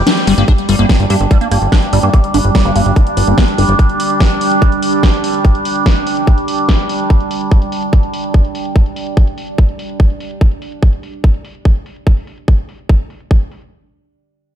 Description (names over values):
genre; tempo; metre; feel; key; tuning
psychedelic trance; 145 BPM; 4/4; straight; unclear; A4 = 439 Hz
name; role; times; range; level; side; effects
overtone-sweeping drone; sustained chords; 0.0-10.5 s; G3 to G4; -18 LUFS; right 2 dB; chorus, built-in reverb, sidechain pumping
plucky analog bass; bass; 0.0-3.7 s; G1 to G2; -13 LUFS; equal; none
liquid acid bass; riff; 0.1-3.6 s; G3 to D4; -17 LUFS; moving between left 6 dB and right 5 dB; phaser, auto-pan, sidechain pumping, ping-pong delay
big-room dance drum kit; drums; 0.1-13.7 s; hi-hat, ride cymbal, snare drum; -20 LUFS; equal; low-pass filter on hats, studio reverb, low-pass filter on cymbals, low-pass filter on snare
electronic kick drum; drums; 0.5-13.4 s; none; -9 LUFS; equal; studio reverb
deep dark ambient pad; texture; 2.3-10.4 s; D4 to G5; -23 LUFS; right 2 dB; chorus, built-in reverb, sidechain pumping
room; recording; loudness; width
light reverb; dark, warm production; -11 LUFS; side -10 dB against mid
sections
0.5-13.7 A section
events
break 0.1-0.5; band accent 0.1; fade-out on ambient pad 0.5-10.4; filter sweep on drum 0.5-13.7; filter sweep on analog synth bass 0.5-3.8; filter sweep on acid bass 0.5-3.8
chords
0.5 G5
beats
0.07 | 0.48 0.89 1.31 1.72 | 2.13 2.55 2.96 3.38 | 3.79 4.20 4.62 5.03 | 5.45 5.86 6.27 6.69 | 7.10 7.51 7.93 8.34 | 8.76 9.17 9.58 10.00 | 10.41 10.82 11.24 11.65 | 12.07 12.48 12.89 13.31